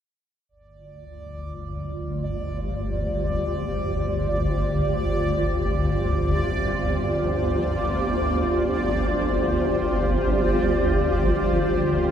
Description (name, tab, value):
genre	dark ambient drone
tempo	free time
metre	none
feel	none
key	unclear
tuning	A4 = 440 Hz
part	granular cloud pad	sustained chords	1.6-12.1 s	F4 to D5	-25 LUFS	equal	built-in reverb, analog chorus
part	swarming drone	drone	1.2-12.1 s	G1 to D2	-25 LUFS	equal	built-in reverb, lush chorus
part	bubbling stepped-filter texture	texture	1.0-12.1 s	D5	-30 LUFS	right 2 dB	chorus, built-in reverb
room	wet lush hall reverb, RT60 2.9 s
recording	dreamy mix soaked in reverb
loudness	-21 LUFS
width	side -9 dB against mid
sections	0.5-12.1 A section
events	filter sweep on synth drone 0.5-12.1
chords	0.5 G5